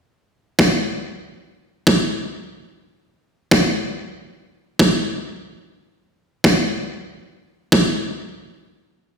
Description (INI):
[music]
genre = drum and bass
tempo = free time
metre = none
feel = none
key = none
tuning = none
[part]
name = electronic kick drum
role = drums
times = 0.6-7.8 s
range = none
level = -13 LUFS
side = right 1 dB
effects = high-pass filter on kick
[sound]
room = little or no reverb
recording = played on a big sound system in a bare room, stone room reverb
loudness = -17 LUFS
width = side -6 dB against mid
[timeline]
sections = 0.6-9.2 A section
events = none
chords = none